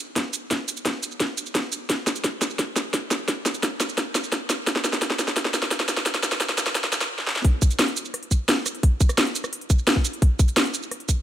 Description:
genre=drum and bass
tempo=173 BPM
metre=4/4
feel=straight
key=none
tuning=none
part: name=drum and bass drum kit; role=drums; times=0.2-11.2 s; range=hi-hat, rim click, shaker, snare drum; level=-22 LUFS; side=equal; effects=none
part: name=electronic kick drum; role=drums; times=0.2-11.2 s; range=none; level=-20 LUFS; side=equal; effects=high-pass filter on kick
room=light reverb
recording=high-pass filter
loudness=-21 LUFS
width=side -12 dB against mid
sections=0.0-7.4 A section; 7.4-11.2 B section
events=build-up 0.0-7.4; drum fill 0.0-7.1, 7.2; drop 7.4-11.2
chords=none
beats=0.16 | 0.51 0.86 1.20 1.55 | 1.90 2.24 2.59 2.94 | 3.28 3.63 3.98 4.32 | 4.67 5.02 5.36 5.71 | 6.06 6.41 6.75 7.10 | 7.45 7.79 8.14 8.49 | 8.83 9.18 9.53 9.87 | 10.22 10.57 10.91

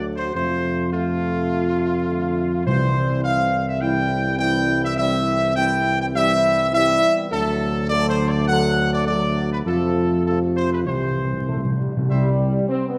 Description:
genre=classical, ceremonial fanfare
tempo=103 BPM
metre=4/4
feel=straight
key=C major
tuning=A4 = 440 Hz
part: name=bright trumpet section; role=melody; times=0.0-12.3 s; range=F4 to G5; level=-24 LUFS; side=equal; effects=none
part: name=mellow French horn section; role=sustained chords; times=0.0-13.0 s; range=E3 to A4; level=-29 LUFS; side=equal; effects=none
part: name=warm trombone section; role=sustained chords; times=0.0-13.0 s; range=C3 to C4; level=-30 LUFS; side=equal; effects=none
part: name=mellow tuba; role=bass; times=0.0-12.6 s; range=C2 to F2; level=-26 LUFS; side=equal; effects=none
part: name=timpani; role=percussion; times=2.7-3.5, 10.9-12.0 s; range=C3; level=-25 LUFS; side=equal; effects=none
room=wet concert hall reverb, RT60 1.9 s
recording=vinyl crackle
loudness=-20 LUFS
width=mono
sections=0.0-12.1 A section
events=timpani fill 10.9-12.1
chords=0.4 F; 2.7 C; 7.3 D; 9.7 F; 10.9 C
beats=| 0.35 0.93 1.50 2.08 | 2.66 3.23 3.81 4.39 | 4.98 5.56 6.14 6.72 | 7.31 7.89 8.47 9.06 | 9.65 10.25 10.86 11.47 | 12.10 12.69

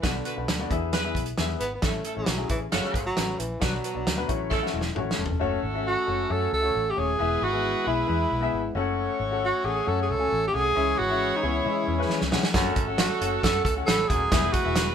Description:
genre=uptempo 1960s-style soul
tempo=135 BPM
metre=4/4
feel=straight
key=unclear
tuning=A4 = 439 Hz
part: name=breathy tenor saxophone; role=melody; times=0.0-14.9 s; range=C#3 to A4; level=-27 LUFS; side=right 2 dB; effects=none
part: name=clear saxophone section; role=second line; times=0.0-14.9 s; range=C#4 to C#5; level=-32 LUFS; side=right 2 dB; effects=none
part: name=warm concert grand piano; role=accompaniment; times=0.0-14.9 s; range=A2 to G#5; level=-31 LUFS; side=left 7 dB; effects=none
part: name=vintage muted fingered electric bass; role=bass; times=0.0-14.9 s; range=D#1 to C#3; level=-32 LUFS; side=equal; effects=none
part: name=warm soul drum kit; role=drums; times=0.0-5.4, 12.1-14.9 s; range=hi-hat, kick drum, snare drum, toms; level=-26 LUFS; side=right 1 dB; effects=none
part: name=hollow-body jazz guitar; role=riff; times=4.7-5.6, 11.4-12.5 s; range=E3 to A4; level=-34 LUFS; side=left 6 dB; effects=none
part: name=tonewheel organ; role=sustained chords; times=5.4-14.9 s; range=E3 to F#4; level=-37 LUFS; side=equal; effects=stopped rotary speaker
part: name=warm baritone saxophone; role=riff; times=12.5-14.6 s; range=E2 to A2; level=-32 LUFS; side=right 5 dB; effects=none
room=moderate studio ambience, RT60 0.5 s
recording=band playing live in one room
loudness=-23 LUFS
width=side -8 dB against mid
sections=0.0-5.4 A section; 5.4-14.9 B section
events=drum fill 4.5-5.4, 12.1-12.5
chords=0.0 Bm; 0.7 E; 1.8 A; 2.7 F#m; 3.6 Bm; 4.3 A; 5.4 F#m; 7.2 E; 8.8 F#m; 10.8 C#m; 12.5 F#m; 14.3 E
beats=| 0.04 0.49 0.93 1.38 | 1.83 2.28 2.73 3.17 | 3.62 4.07 4.51 4.96 | 5.41 5.86 6.30 6.75 | 7.19 7.64 8.08 8.53 | 8.97 9.42 9.87 10.31 | 10.76 11.20 11.65 12.09 | 12.54 12.98 13.43 13.87 | 14.32 14.76

